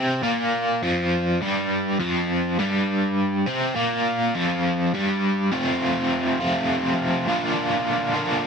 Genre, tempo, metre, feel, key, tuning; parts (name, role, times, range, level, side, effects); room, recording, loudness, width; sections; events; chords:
rock; 68 BPM (dotted quarters); 6/8; straight; F major; A4 = 439 Hz
biting overdriven guitar; solo; 0.0-8.5 s; F2 to F4; -20 LUFS; equal; tremolo
light reverb; dry, close 1970s-style studio recording; -20 LUFS; side -6 dB against mid
0.0-5.5 A section; 5.5-8.5 B section
0.0 F5; 5.5 F; 7.3 Bb